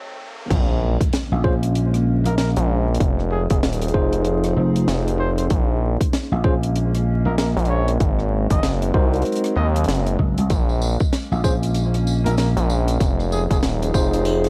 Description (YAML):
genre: glitch hop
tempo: 96 BPM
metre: 4/4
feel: swing 60% on 16ths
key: Bb minor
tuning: A4 = 442 Hz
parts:
  - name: warbly tape-like pad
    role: sustained chords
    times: 0.0-14.5 s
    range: Ab2 to Ab4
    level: -31 LUFS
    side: equal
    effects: chorus, built-in reverb, phaser, sidechain pumping
  - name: riser and impact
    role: sound effects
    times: 0.0-3.0 s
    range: none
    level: -35 LUFS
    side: equal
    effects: none
  - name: gritty driven synth bass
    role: bass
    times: 0.5-14.5 s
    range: Eb1 to Eb2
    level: -22 LUFS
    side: equal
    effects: none
  - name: electronic kick drum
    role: drums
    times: 0.5-14.1 s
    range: none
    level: -23 LUFS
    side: equal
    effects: none
  - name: tight funk drum kit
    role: drums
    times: 0.5-14.5 s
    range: crash cymbal, hi-hat, rim click, snare drum, tambourine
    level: -30 LUFS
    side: equal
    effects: none
  - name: vintage slap bass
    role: bass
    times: 1.3-12.5 s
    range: F1 to C2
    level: -22 LUFS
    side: equal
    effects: none
  - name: bright tine electric piano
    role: stabs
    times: 1.4-14.5 s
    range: Db4 to C5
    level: -28 LUFS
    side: equal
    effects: sidechain pumping, analog delay
  - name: breathy trumpet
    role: melody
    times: 2.3-13.6 s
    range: Ab4 to Eb5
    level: -32 LUFS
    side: equal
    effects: analog delay
room: small room ambience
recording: dry, gritty hardware recording, vinyl crackle, high-pass filter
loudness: -20 LUFS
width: mono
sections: 0.5-14.5 A section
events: break 0.0-0.5; riser 0.0-0.5; drop 0.5-14.5; impact 0.5-3.0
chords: 0.0 Ab7; 0.5 Bbm7; 3.0 Fm7; 5.5 Bbm7; 8.0 Ab7; 10.5 Bbm7; 13.0 Fm7